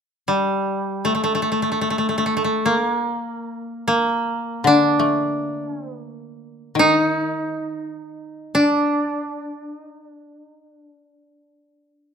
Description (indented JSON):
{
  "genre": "japanese traditional",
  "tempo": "free time",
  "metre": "none",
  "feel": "none",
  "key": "D miyako bushi",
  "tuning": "A4 = 440 Hz",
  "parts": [
    { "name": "koto", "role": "melody", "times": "0.3-11.9 s", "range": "G3 to Eb4", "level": "-19 LUFS", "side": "equal", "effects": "none" },
    { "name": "koto", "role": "accompaniment", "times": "4.6-10.1 s", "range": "D3 to A3", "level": "-22 LUFS", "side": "left 5 dB", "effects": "none" }
  ],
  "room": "moderate recital hall reverb, RT60 1.4 s",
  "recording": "close, detailed microphones",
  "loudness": "-18 LUFS",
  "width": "side -7 dB against mid",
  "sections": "0.0-12.1 A section",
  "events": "none",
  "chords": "none"
}